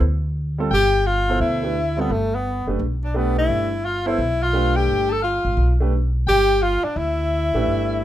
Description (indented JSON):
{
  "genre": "modal jazz",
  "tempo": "173 BPM",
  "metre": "4/4",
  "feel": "swing 64% on 8ths",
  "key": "G mixolydian",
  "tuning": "A4 = 444 Hz",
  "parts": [
    { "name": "upright bass", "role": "bass", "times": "0.0-8.0 s", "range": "F#1 to D2", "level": "-22 LUFS", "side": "equal", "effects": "none" },
    { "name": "warm concert grand piano", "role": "accompaniment", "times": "0.6-8.0 s", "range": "B2 to C5", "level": "-25 LUFS", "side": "right 2 dB", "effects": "none" },
    { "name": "breathy tenor saxophone", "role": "melody", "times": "0.7-8.0 s", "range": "A3 to A4", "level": "-21 LUFS", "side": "left 1 dB", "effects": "none" },
    { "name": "mellow alto saxophone", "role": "second line", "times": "0.7-8.0 s", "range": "A4 to A5", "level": "-28 LUFS", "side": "left 4 dB", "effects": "none" }
  ],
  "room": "little or no reverb",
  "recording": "minimal, uncompressed stereo recording",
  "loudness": "-18 LUFS",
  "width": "side -12 dB against mid",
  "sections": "0.0-8.0 A section",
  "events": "none",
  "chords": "0.0 G13",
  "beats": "0.02 0.36 | 0.71 1.06 1.41 1.75 | 2.10 2.45 2.80 3.15 | 3.49 3.84 4.19 4.54 | 4.88 5.23 5.58 5.92 | 6.27 6.62 6.97 7.32 | 7.66 8.01"
}